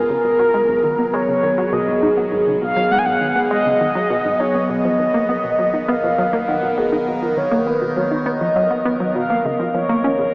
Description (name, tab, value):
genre	ambient, sequencer-driven space music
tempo	101 BPM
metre	4/4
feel	straight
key	G# dorian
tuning	A4 = 440 Hz
part	mellow horn-like synth lead	melody	0.0-10.3 s	G#4 to G#5	-18 LUFS	equal	wide subtle chorus, tape echo
part	evolving wavetable pad	sustained chords	0.0-10.3 s	D#3 to A#4	-21 LUFS	equal	phaser, built-in reverb
part	analog pluck	riff	0.0-10.3 s	G#2 to F#4	-23 LUFS	equal	chorus, tape echo
part	round analog bass	bass	0.0-9.4 s	G#1 to B1	-41 LUFS	equal	none
room	wet huge ambient reverb, RT60 7.3 s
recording	in a vast, echoing space, AM radio sound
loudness	-15 LUFS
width	side -27 dB against mid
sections	0.0-9.4 A section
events	none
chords	0.0 G#m7; 4.7 Bmaj7; 9.4 C#6